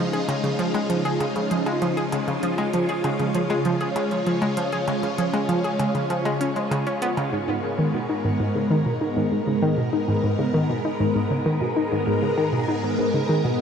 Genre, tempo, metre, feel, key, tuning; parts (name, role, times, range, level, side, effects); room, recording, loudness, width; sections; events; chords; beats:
ambient, sequencer-driven space music; 98 BPM; 4/4; straight; G# dorian; A4 = 441 Hz
phased string machine; sustained chords; 0.0-13.6 s; G#2 to A#4; -24 LUFS; equal; ensemble chorus, phaser
analog pluck; riff; 0.0-13.6 s; G#2 to G#4; -23 LUFS; equal; chorus, vintage 12-bit sampler grit, tape echo
electronic hi-hat and percussion blips; percussion; 0.1-7.3 s; -38 LUFS; equal; tape echo
wet shimmer reverb, RT60 7.7 s; dark, warm production; -21 LUFS; side -7 dB against mid
0.0-7.3 A section; 7.3-13.6 B section
filter sweep on synth arpeggio sound 7.3-13.6
0.0 C#add9; 7.3 G#madd9
0.59 1.21 1.82 | 2.43 3.04 3.65 4.27 | 4.88 5.49 6.10 6.71 | 7.33 7.94 8.55 9.16 | 9.78 10.39 11.00 11.61 | 12.22 12.84 13.45